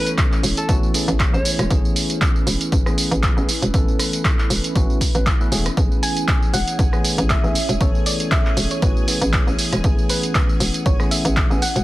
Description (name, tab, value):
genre	deep house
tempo	118 BPM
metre	4/4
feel	swing 55% on 16ths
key	A major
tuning	A4 = 440 Hz
part	breathy alto saxophone	melody	0.0-1.7 s	A4 to C#5	-28 LUFS	equal	tape echo
part	dark analog pad	sustained chords	0.0-11.8 s	C#4 to F#5	-30 LUFS	right 1 dB	chorus, phaser, sidechain pumping
part	tine electric piano	stabs	0.0-11.6 s	E3 to B4	-26 LUFS	equal	sidechain pumping, tape echo
part	punchy analog drum machine	drums	0.1-11.8 s	handclaps, hi-hat, rim click, tambourine	-23 LUFS	right 1 dB	none
part	electronic kick drum	drums	0.2-11.5 s	none	-19 LUFS	equal	none
part	hollow knocking FM bass	bass	0.4-11.8 s	E1 to A1	-21 LUFS	equal	tube saturation, sidechain pumping
part	soft string machine	texture	5.8-11.8 s	G#4 to G#5	-36 LUFS	left 1 dB	ensemble chorus
part	soft round pluck	melody	6.0-11.8 s	B4 to G#5	-28 LUFS	equal	wide subtle chorus, cassette tape, tape echo
room	digital ambience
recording	dense, heavily limited modern master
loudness	-16 LUFS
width	side -17 dB against mid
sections	0.0-11.8 A section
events	none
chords	0.0 Amaj7